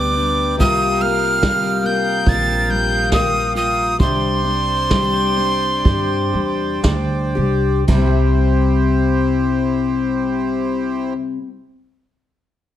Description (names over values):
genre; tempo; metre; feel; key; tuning
acoustic folk duo or small band; 56-73 BPM; 4/4; straight; C major; A4 = 440 Hz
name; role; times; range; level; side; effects
breathy bright mid whistle; melody; 0.0-6.8 s; C6 to A6; -19 LUFS; right 1 dB; plate reverb
fingerpicked steel-string acoustic guitar; accompaniment; 0.0-11.6 s; C3 to B4; -20 LUFS; left 5 dB; none
accordion; sustained chords; 0.0-11.1 s; E4 to Eb6; -25 LUFS; right 3 dB; none
upright bass; bass; 0.0-11.1 s; Bb1 to G2; -21 LUFS; right 1 dB; none
vintage brush drum kit; drums; 0.6-8.1 s; crash cymbal, kick drum, snare drum; -18 LUFS; right 1 dB; none
room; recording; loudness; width
light reverb; none; -15 LUFS; side -11 dB against mid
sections
0.0-7.9 A section; 7.9-12.2 B section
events
slowing down 0.6-7.9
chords
0.0 G; 0.6 Ebadd9/C; 4.0 Csus2; 7.9 C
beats
| 0.59 1.42 2.26 3.12 | 4.00 4.91 5.85 6.84 | 7.88 8.95 10.03 11.10